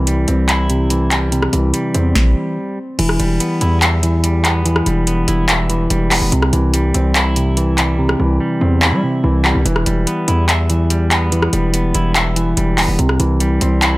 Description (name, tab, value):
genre	hip hop, trap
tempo	144 BPM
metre	4/4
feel	half-time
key	E minor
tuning	A4 = 440 Hz
part	semi-hollow electric guitar	accompaniment	0.0-14.0 s	C3 to E5	-17 LUFS	equal	low-pass filter
part	distorted 808-style bass	bass	0.0-14.0 s	E1 to G3	-16 LUFS	equal	distortion
part	booming analog drum machine	drums	0.1-13.9 s	crash cymbal, handclaps, hi-hat, kick drum, rim click, snare drum	-17 LUFS	equal	none
room	little or no reverb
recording	none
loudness	-13 LUFS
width	side -20 dB against mid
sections	0.0-3.0 A section; 3.0-14.0 B section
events	hi-hats muted 8.0-9.7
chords	0.0 C; 3.0 Em; 6.3 C; 9.7 Em; 13.0 C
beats	0.07 0.49 0.91 | 1.32 1.74 2.15 2.57 | 2.99 3.40 3.82 4.24 | 4.66 5.07 5.49 5.91 | 6.32 6.74 7.16 7.57 | 7.99 8.40 8.82 9.24 | 9.65 10.07 10.49 10.90 | 11.32 11.74 12.15 12.57 | 12.99 13.40 13.82